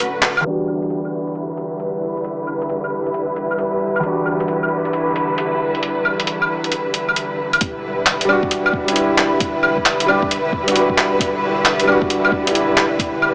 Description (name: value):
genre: future garage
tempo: 134 BPM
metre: 4/4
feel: swing 65% on 16ths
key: E minor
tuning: A4 = 440 Hz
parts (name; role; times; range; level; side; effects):
- dark studio string section; sustained chords; 0.0-13.3 s; D3 to B4; -20 LUFS; equal; sidechain pumping, low-pass filter
- soft dub sub bass; bass; 0.0-0.4, 7.6-13.3 s; D1 to E1; -38 LUFS; equal; sidechain pumping
- lo-fi sampler-style drum kit; drums; 0.0-13.3 s; claves, handclaps, hi-hat; -17 LUFS; equal; none
- felt-muted upright piano; accompaniment; 0.4-13.3 s; E2 to G4; -21 LUFS; equal; sidechain pumping, dub echo
- electronic kick drum; drums; 7.6-13.1 s; none; -25 LUFS; equal; none
room: moderate huge ambient reverb, RT60 7.5 s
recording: low-pass filter, small speaker sound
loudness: -16 LUFS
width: side -35 dB against mid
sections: 0.5-7.6 A section; 7.6-13.3 B section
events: band accent 0.2; filter sweep on string section 0.5-7.6; filter sweep 0.5-7.6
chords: 0.5 Em7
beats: 0.01 | 0.45 0.90 1.35 1.80 | 2.24 2.69 3.14 3.59 | 4.03 4.48 4.93 5.38 | 5.83 6.27 6.72 7.17 | 7.62 8.06 8.51 8.96 | 9.41 9.86 10.30 10.75 | 11.20 11.65 12.09 12.54 | 12.99